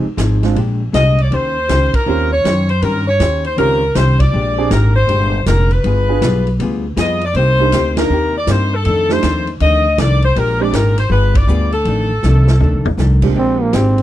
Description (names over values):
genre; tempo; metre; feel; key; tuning
jazz, big band swing; 159 BPM; 4/4; swing 65% on 8ths; Bb mixolydian; A4 = 440 Hz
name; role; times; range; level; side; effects
hollow-body jazz guitar; accompaniment; 0.0-14.0 s; F2 to C5; -22 LUFS; left 4 dB; none
warm baby grand piano; accompaniment; 0.0-10.7, 13.2-13.7 s; Bb2 to Bb4; -20 LUFS; right 10 dB; none
upright bass; bass; 0.0-14.0 s; F1 to G2; -15 LUFS; equal; none
vintage drum kit; drums; 0.2-14.0 s; crash cymbal, hi-hat, kick drum, ride cymbal, snare drum, toms; -22 LUFS; equal; none
clear saxophone section; melody; 0.9-12.9 s; A4 to Eb5; -17 LUFS; left 2 dB; none
growling trombone; melody; 13.4-14.0 s; Bb3 to C4; -15 LUFS; right 2 dB; none
room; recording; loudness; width
studio ambience; dry, close 1970s-style studio recording; -12 LUFS; side -13 dB against mid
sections
0.0-13.4 A section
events
band accent 1.9, 4.1, 7.9, 11.3; drum fill 12.2-13.0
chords
0.0 Fm7; 0.6 Bb13; 1.3 Eb13; 4.3 Bb13; 5.8 G7b9; 7.3 Cm7; 8.8 F13; 10.4 Bb13; 11.1 G7b9; 11.9 F13; 13.4 Bb13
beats
0.18 0.56 0.94 | 1.31 1.69 2.07 2.44 | 2.82 3.20 3.58 3.95 | 4.33 4.71 5.08 5.46 | 5.84 6.21 6.59 6.97 | 7.34 7.72 8.10 8.47 | 8.85 9.22 9.60 9.97 | 10.35 10.73 11.10 11.48 | 11.85 12.23 12.60 12.98 | 13.35 13.73